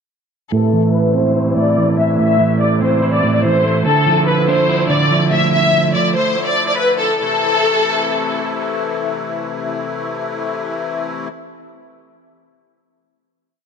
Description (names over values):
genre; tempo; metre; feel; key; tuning
hip hop, drill; 144 BPM; 4/4; half-time; A minor; A4 = 440 Hz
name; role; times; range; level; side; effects
warm studio violin section; melody; 0.5-8.4 s; A4 to E5; -16 LUFS; left 2 dB; low-pass filter, tape echo
electric guitar at the edge of break-up; accompaniment; 0.5-6.4 s; A2 to E4; -16 LUFS; right 4 dB; low-pass filter
musette accordion; sustained chords; 0.5-11.3 s; C3 to E4; -23 LUFS; left 5 dB; low-pass filter
room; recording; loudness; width
light reverb, studio reverb; dark, warm production; -14 LUFS; side -6 dB against mid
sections
0.5-7.2 breakdown; 7.2-10.5 final chord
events
filter sweep 0.5-7.2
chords
0.5 Am; 3.9 Dmadd9; 7.2 Am